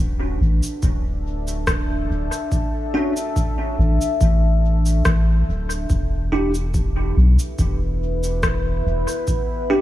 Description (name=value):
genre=ambient dub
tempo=71 BPM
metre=4/4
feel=swing 54% on 16ths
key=unclear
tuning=A4 = 440 Hz
part: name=deep dark ambient pad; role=sustained chords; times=0.4-9.8 s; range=D4 to G5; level=-27 LUFS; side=left 1 dB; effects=chorus, built-in reverb
part: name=soft dub sub bass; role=bass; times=0.0-9.1 s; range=D1 to B1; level=-19 LUFS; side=equal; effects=none
part: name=electronic cabasa and rim click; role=drums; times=0.6-9.5 s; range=none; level=-28 LUFS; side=left 1 dB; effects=dub echo
part: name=electronic kick drum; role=drums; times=0.8-9.5 s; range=none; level=-24 LUFS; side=equal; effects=none
part: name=bell-like tine electric piano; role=stabs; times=2.9-9.8 s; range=C#4 to G4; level=-25 LUFS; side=right 1 dB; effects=ensemble chorus, dub echo
room=little or no reverb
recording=small room ambience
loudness=-18 LUFS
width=side -14 dB against mid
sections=0.0-9.8 A section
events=fade-in on ambient pad 0.0-9.8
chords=0.0 D; 5.9 Em7